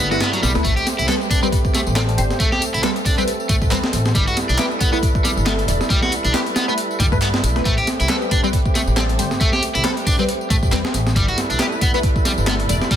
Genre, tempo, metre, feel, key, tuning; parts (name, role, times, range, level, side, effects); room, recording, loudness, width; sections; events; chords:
breakbeat, breaks; 137 BPM; 4/4; swing 56% on 16ths; A minor; A4 = 441 Hz
tonewheel organ; sustained chords; 0.0-13.0 s; G3 to B4; -26 LUFS; right 2 dB; overdrive, stopped rotary speaker, vintage 12-bit sampler grit, sidechain pumping
crunchy overdriven guitar; riff; 0.0-13.0 s; F#3 to A4; -22 LUFS; equal; tube saturation, vintage 12-bit sampler grit, tape echo
upright bass; bass; 0.0-12.8 s; E1 to G2; -21 LUFS; equal
garage drum kit; drums; 0.0-13.0 s; handclaps, hi-hat, tambourine; -28 LUFS; left 2 dB; overdrive, small room ambience
filtered dub chord stab; stabs; 0.1-12.8 s; G3 to D5; -25 LUFS; left 1 dB; phaser, ensemble chorus, tape echo
breakbeat sampler-style drum kit; drums; 0.1-13.0 s; hi-hat, kick drum, snare drum; -20 LUFS; equal; small room ambience
light reverb, digital ambience; dense, heavily limited modern master; -16 LUFS; side -10 dB against mid
0.0-13.0 A section
0.0 G69; 0.6 Am9; 4.2 G69; 7.7 Am9; 11.2 G69